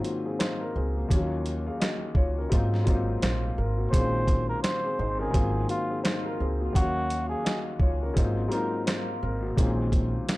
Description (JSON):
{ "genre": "hip hop, boom-bap hip-hop", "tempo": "85 BPM", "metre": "4/4", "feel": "swing 60% on 16ths", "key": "unclear", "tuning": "A4 = 441 Hz", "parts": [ { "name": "dark concert grand piano", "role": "accompaniment", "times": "0.0-10.4 s", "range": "Eb2 to F5", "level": "-30 LUFS", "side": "left 2 dB", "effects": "high-pass filter, low-pass filter" }, { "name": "boom bap sampler-style drum kit", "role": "drums", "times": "0.0-10.4 s", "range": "hi-hat, kick drum, snare drum", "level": "-26 LUFS", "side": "equal", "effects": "none" }, { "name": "upright bass", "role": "bass", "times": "0.8-10.2 s", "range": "Ab1 to Ab2", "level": "-29 LUFS", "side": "equal", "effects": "none" }, { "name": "trumpet with cup mute", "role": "melody", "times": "3.9-8.8 s", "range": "F4 to C5", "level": "-32 LUFS", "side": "equal", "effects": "high-pass filter, low-pass filter, tape echo" } ], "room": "little or no reverb", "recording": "dry, gritty hardware recording", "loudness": "-24 LUFS", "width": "side -19 dB against mid", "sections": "0.0-10.4 A section", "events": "none", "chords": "0.0 Ab13; 1.1 Ebm7; 2.5 Ab13; 6.8 Ebm7; 8.2 Ab13; 9.6 Bbm11", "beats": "0.40 | 1.11 1.81 2.52 3.22 | 3.93 4.64 5.34 6.05 | 6.75 7.46 8.16 8.87 | 9.58 10.28" }